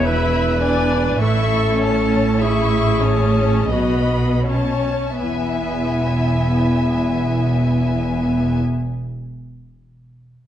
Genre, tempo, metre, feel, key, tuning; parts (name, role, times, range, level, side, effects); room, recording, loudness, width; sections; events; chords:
classical, slow romantic movement for symphony orchestra; 38-52 BPM; 3/4; rubato; E major; A4 = 439 Hz
rich chamber violin section; melody; 0.0-8.6 s; G#5 to C#6; -29 LUFS; left 4 dB
clear clarinet; second line; 0.0-8.6 s; E4 to B4; -24 LUFS; left 2 dB
rich chamber violin section; second line; 0.0-8.6 s; C#5 to E5; -26 LUFS; left 3 dB
clear chamber viola section; accompaniment; 0.0-8.6 s; B3 to E4; -23 LUFS; left 2 dB
rich studio cello section; bass; 0.0-8.6 s; E2 to B2; -21 LUFS; right 3 dB
warm chamber double bass section; bass; 0.0-8.6 s; E1 to B1; -22 LUFS; right 1 dB
wet recital hall reverb, RT60 1.3 s; dark, warm production, nothing above 10.9 kHz; -16 LUFS; side -11 dB against mid
0.0-5.2 A section; 5.2-9.4 B section
slowing down 0.0-5.2
0.0 E7; 1.2 A; 3.7 B9; 5.2 E